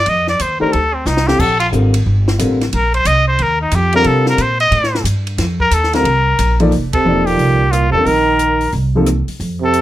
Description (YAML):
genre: modal jazz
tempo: 180 BPM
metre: 4/4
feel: swing 64% on 8ths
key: F mixolydian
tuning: A4 = 440 Hz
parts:
  - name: trumpet with straight mute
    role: melody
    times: 0.0-9.8 s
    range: C4 to Eb5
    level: -15 LUFS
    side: left 1 dB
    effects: none
  - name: upright bass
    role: bass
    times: 0.0-9.8 s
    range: E1 to C3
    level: -16 LUFS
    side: right 1 dB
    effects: none
  - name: compact cocktail drum kit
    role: drums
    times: 0.1-9.8 s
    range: crash cymbal, hi-hat, kick drum, ride cymbal, rim click, snare drum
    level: -24 LUFS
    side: left 1 dB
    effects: none
  - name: warm concert grand piano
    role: accompaniment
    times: 0.6-9.1 s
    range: C3 to D5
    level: -17 LUFS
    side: left 1 dB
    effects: none
  - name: warm trombone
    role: second line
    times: 6.9-9.8 s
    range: Bb2 to Eb3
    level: -18 LUFS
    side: right 5 dB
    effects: none
room: light reverb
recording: none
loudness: -12 LUFS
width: side -14 dB against mid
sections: 0.0-6.7 A section; 6.7-9.8 B section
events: muted trumpet solo 0.0-6.7; drum fill 1.1-1.4; band accent 6.9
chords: 0.0 F9sus4; 6.7 F7sus4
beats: | 0.07 0.40 0.73 1.07 | 1.40 1.73 2.06 2.40 | 2.73 3.06 3.40 3.73 | 4.06 4.39 4.73 5.06 | 5.39 5.73 6.06 6.39 | 6.73 7.06 7.39 7.73 | 8.06 8.40 8.73 9.06 | 9.40 9.73